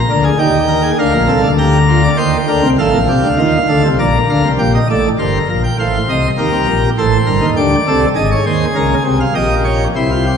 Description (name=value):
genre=classical, baroque-style 3-part fugue for pipe organ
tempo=100 BPM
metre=3/4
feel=straight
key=Eb major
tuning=A4 = 440 Hz
part: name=pipe organ, plenum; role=solo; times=0.0-10.4 s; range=G1 to Bb5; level=-11 LUFS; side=equal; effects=none
room=wet church reverb, RT60 2.6 s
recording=nothing above 10.7 kHz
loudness=-11 LUFS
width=side -7 dB against mid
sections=0.0-4.6 A section; 4.6-10.4 B section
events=none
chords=0.4 Eb; 1.0 Bb; 2.2 Cm7/Eb; 2.8 F7/A; 4.0 Bb; 4.6 Gm; 5.8 F/A; 6.4 Eb; 7.6 D5; 8.2 Fm/Ab; 9.4 Gdim/Bb